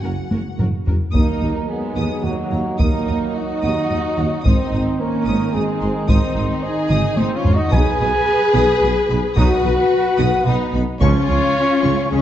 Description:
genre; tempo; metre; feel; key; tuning
cinematic, epic orchestral film score; 110 BPM; 3/4; straight; unclear; A4 = 440 Hz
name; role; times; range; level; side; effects
warm symphonic violin section; melody; 0.0-12.2 s; F#5 to D#6; -33 LUFS; left 4 dB; none
warm symphonic violin section; second line; 0.0-12.2 s; A#3 to B4; -26 LUFS; left 4 dB; none
dark symphonic viola section; accompaniment; 0.0-12.2 s; F#3 to G#4; -26 LUFS; right 2 dB; none
mellow French horn section; sustained chords; 0.0-12.2 s; F#3 to G#4; -23 LUFS; left 4 dB; none
dark tuba; bass; 0.0-12.2 s; F#1 to D#2; -25 LUFS; right 2 dB; none
warm studio cello section; bass; 0.0-12.2 s; D#2 to C#3; -25 LUFS; right 2 dB; none
warm symphonic double bass section; bass; 0.0-12.2 s; F#1 to D#2; -26 LUFS; right 2 dB; none
solo taiko drums; drums; 0.3-11.5 s; none; -20 LUFS; left 1 dB; none
bright trombone section; sustained chords; 1.1-11.2 s; D#3 to D#4; -28 LUFS; right 3 dB; none
dark trumpet; stabs; 1.1-12.2 s; F#4 to G#5; -23 LUFS; right 2 dB; none
room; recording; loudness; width
wet scoring stage reverb, RT60 1.5 s; dark, warm production, nothing above 7.8 kHz; -15 LUFS; side -11 dB against mid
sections
0.0-1.1 A section; 1.1-12.2 B section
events
drum fill 0.3-1.1, 6.9-7.7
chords
0.0 F#; 1.1 D#m; 4.5 G#; 7.7 B; 11.0 C#

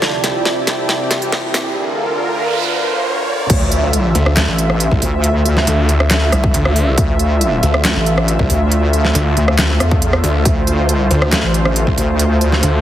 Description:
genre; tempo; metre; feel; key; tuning
heavy wobble dubstep; 138 BPM; 4/4; half-time; D minor; A4 = 439 Hz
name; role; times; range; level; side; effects
lush unison pad; sustained chords; 0.0-12.8 s; C2 to E5; -19 LUFS; equal; chorus, sidechain pumping
dubstep drum kit; drums; 0.0-12.7 s; crash cymbal, handclaps, hi-hat, rim click, snare drum; -18 LUFS; equal; high-pass filter on hats, high-pass filter on snare, high-pass filter on toms, high-pass filter on cymbals
riser, noise sweep and impact; sound effects; 0.1-5.2 s; none; -23 LUFS; right 2 dB; none
deep dark ambient pad; texture; 0.0-1.8 s; E4 to A5; -24 LUFS; right 3 dB; chorus, built-in reverb, sidechain pumping
wobble bass; bass; 3.5-12.6 s; A1 to E2; -15 LUFS; equal; chorus, overdrive
electronic kick drum; drums; 3.5-12.0 s; none; -17 LUFS; equal; none
snarling distorted saw bass; bass; 4.2-12.8 s; C2 to D2; -15 LUFS; equal; distortion, overdrive
room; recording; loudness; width
light reverb; heavily compressed radio sound, multiband compression, high-pass filter; -12 LUFS; side -12 dB against mid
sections
0.0-3.5 A section; 3.5-12.8 B section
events
build-up 0.0-3.5; drum fill 0.0-1.8; riser 0.1-3.5; noise sweep 1.8-3.5; drop 3.5-12.8; impact 3.5-5.2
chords
0.0 C; 1.8 Bb/D; 3.5 Dmadd9

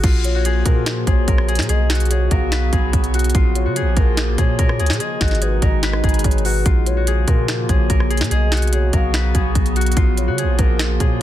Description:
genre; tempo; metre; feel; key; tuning
hip hop, trap; 145 BPM; 4/4; half-time; Bb phrygian; A4 = 441 Hz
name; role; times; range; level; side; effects
concert harp; melody; 0.0-11.2 s; F4 to Cb5; -24 LUFS; left 2 dB; low-pass filter
warbly tape-like pad; sustained chords; 0.3-11.2 s; Cb3 to F#4; -26 LUFS; equal; chorus, built-in reverb
long sustained 808-style bass; bass; 0.0-11.2 s; Ab1 to Db3; -19 LUFS; equal; none
trap drum kit; drums; 0.0-11.1 s; crash cymbal, finger snaps, hi-hat, kick drum, rim click, snare drum; -18 LUFS; equal; none
gliding portamento lead; second line; 0.2-11.2 s; Bb4 to F5; -29 LUFS; left 3 dB; chorus, digital delay
room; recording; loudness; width
digital ambience; dense, heavily limited modern master; -15 LUFS; side -12 dB against mid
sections
0.0-11.2 A section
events
none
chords
0.0 Bbm; 1.7 Bsus2; 3.3 Bbm; 5.0 Abm; 6.7 Bbm; 8.3 Bsus2; 10.0 Bbm

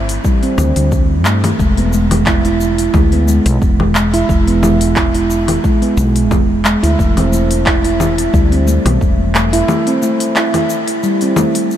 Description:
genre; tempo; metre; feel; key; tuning
organic downtempo; 89 BPM; 4/4; swing 54% on 16ths; unclear; A4 = 444 Hz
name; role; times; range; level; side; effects
handpan; arpeggios; 0.0-11.5 s; G3 to E4; -15 LUFS; right 1 dB; analog delay
woody fretless electric bass; bass; 0.0-9.6 s; E1 to G2; -15 LUFS; equal; sidechain pumping
afro-pop drum kit; drums; 0.1-11.8 s; congas, handclaps, hi-hat, shaker; -19 LUFS; left 2 dB; none
electronic kick drum; drums; 0.2-9.2 s; none; -15 LUFS; equal; none
room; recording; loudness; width
moderate huge ambient reverb, RT60 7.3 s; dreamy mix soaked in reverb; -11 LUFS; side -11 dB against mid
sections
0.0-11.8 A section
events
none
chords
0.0 Gsus4; 1.6 E; 7.0 C/E

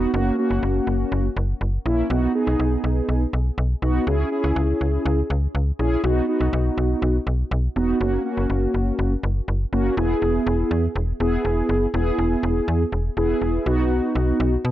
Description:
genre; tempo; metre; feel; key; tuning
synth-pop; 122 BPM; 4/4; straight; B major; A4 = 443 Hz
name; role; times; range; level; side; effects
mellow synth brass; accompaniment; 0.0-14.5 s; A#3 to G#4; -22 LUFS; equal; chorus
slap-like FM bass; bass; 0.0-14.7 s; E1 to B2; -22 LUFS; equal; none
room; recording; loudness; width
light reverb; none; -19 LUFS; side -13 dB against mid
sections
0.0-10.0 A section; 10.0-14.7 B section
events
none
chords
0.1 F#; 2.1 B; 4.1 C#m; 6.0 B; 8.0 F#; 10.0 E; 13.7 B

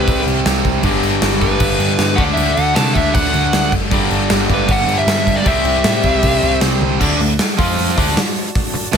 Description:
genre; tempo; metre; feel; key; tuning
hard rock; 156 BPM; 4/4; straight; D mixolydian; A4 = 440 Hz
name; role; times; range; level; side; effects
dark smooth lead guitar; melody; 0.0-6.6 s; B4 to A5; -19 LUFS; left 1 dB; overdrive
warm analog pad; sustained chords; 0.0-9.0 s; G3 to C6; -29 LUFS; equal; none
distorted electric guitar; riff; 0.0-9.0 s; G2 to F4; -20 LUFS; right 13 dB; overdrive
overdriven semi-hollow guitar; riff; 0.0-9.0 s; G2 to F4; -21 LUFS; left 13 dB; none
overdriven picked electric bass; bass; 0.0-9.0 s; F#1 to C3; -20 LUFS; equal; none
gated 80s drum kit; drums; 0.1-9.0 s; crash cymbal, hi-hat, kick drum, snare drum, toms; -17 LUFS; equal; none
room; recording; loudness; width
light reverb; none; -13 LUFS; side -7 dB against mid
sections
0.0-7.0 A section; 7.0-9.0 B section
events
drum fill 6.8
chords
0.0 C5; 0.8 G; 2.2 D; 3.9 G5; 5.5 C; 7.0 D; 7.6 F5; 8.0 D

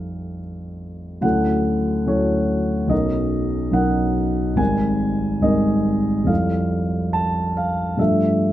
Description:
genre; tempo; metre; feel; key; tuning
classical, impressionist solo piano; 71 BPM; 4/4; rubato; unclear; A4 = 440 Hz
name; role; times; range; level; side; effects
warm concert grand piano; solo; 0.0-8.5 s; G#1 to A5; -18 LUFS; equal; none
room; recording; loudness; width
moderate concert hall reverb, RT60 1.7 s; close, detailed microphones; -18 LUFS; side -13 dB against mid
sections
0.0-8.5 A section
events
none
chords
0.0 F9; 1.2 Dmaj9; 2.9 Bmaj9; 4.6 G#maj9; 6.3 Fmaj9; 8.0 G7sus2

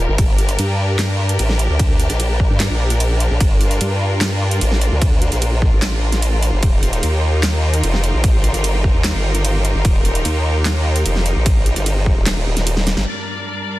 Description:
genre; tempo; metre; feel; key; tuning
heavy wobble dubstep; 149 BPM; 4/4; half-time; G minor; A4 = 438 Hz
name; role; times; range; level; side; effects
rich symphonic string section; sustained chords; 0.0-13.8 s; G2 to D5; -24 LUFS; equal; sidechain pumping
formant-sweep wobble bass; bass; 0.0-13.1 s; Eb1 to G2; -17 LUFS; equal; chorus, overdrive
dubstep drum kit; drums; 0.2-13.1 s; handclaps, hi-hat, ride cymbal, snare drum; -23 LUFS; right 1 dB; low-pass filter on hats, low-pass filter on snare, low-pass filter on cymbals
electronic kick drum; drums; 0.2-12.1 s; none; -16 LUFS; equal; none
room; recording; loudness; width
little or no reverb; dense, heavily limited modern master; -14 LUFS; side -17 dB against mid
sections
0.0-13.1 A section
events
drop 0.0-13.1; drum fill 12.8-13.1; band accent 13.0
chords
0.2 Gm; 6.6 Ebadd9; 13.1 Gm

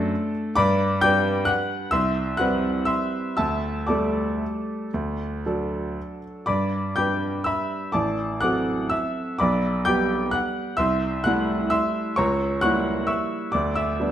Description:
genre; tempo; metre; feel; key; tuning
classical, piano waltz; 112-136 BPM; 3/4; rubato; G major; A4 = 438 Hz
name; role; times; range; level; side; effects
clear baby grand piano; solo; 0.0-14.1 s; A1 to G6; -21 LUFS; equal; none
room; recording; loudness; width
moderate recital hall reverb, RT60 1.3 s; none; -21 LUFS; side -10 dB against mid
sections
0.0-14.1 A section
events
none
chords
0.0 D7/F#; 0.6 G; 1.9 Cmaj7; 3.4 Dsus4; 4.9 D; 6.5 G; 7.9 D7/A; 9.4 G/B; 10.8 Am7/C; 12.2 C#dim7; 13.5 G/D

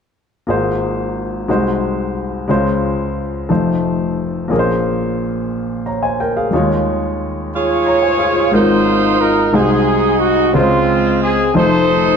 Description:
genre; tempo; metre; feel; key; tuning
gospel; 60 BPM (dotted quarters); 6/8; straight; Ab major; A4 = 438 Hz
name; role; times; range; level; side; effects
warm baby grand piano; accompaniment; 0.5-12.2 s; F1 to Bb5; -16 LUFS; left 1 dB; none
warm horn section; melody; 7.6-12.2 s; Ab3 to Db5; -13 LUFS; right 1 dB; none
room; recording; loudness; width
wet recital hall reverb, RT60 1.6 s; dark, warm production; -13 LUFS; side -6 dB against mid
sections
0.5-8.5 A section; 8.5-12.2 B section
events
none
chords
0.5 Ab69; 1.5 Ab7/C; 2.5 Dbmaj7; 3.5 F7; 4.5 Bbm9; 6.5 Eb9sus4; 8.5 Ab69; 9.5 Ab7/C; 10.5 Dbmaj7; 11.6 F7

